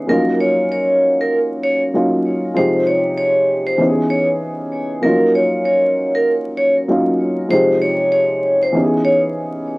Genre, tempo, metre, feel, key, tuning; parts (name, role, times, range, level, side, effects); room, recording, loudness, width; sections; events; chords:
hip hop; 97 BPM; 4/4; swing 58% on 16ths; Eb dorian; A4 = 441 Hz
dark upright piano; accompaniment; 0.0-9.8 s; C3 to Ab4; -18 LUFS; equal; high-pass filter, low-pass filter, cassette tape
vibraphone with medium hard mallets; melody; 0.1-9.2 s; Bb4 to Db5; -16 LUFS; equal; high-pass filter, low-pass filter, cassette tape
moderate small room reverb, RT60 0.5 s; home recording on cassette, vinyl crackle; -14 LUFS; side -23 dB against mid
0.0-5.0 A section; 5.0-9.8 A section
0.1 Ebm7; 2.6 Fm7; 3.8 Dbm7; 5.0 Ebm7; 7.5 Fm7; 8.7 Dbm7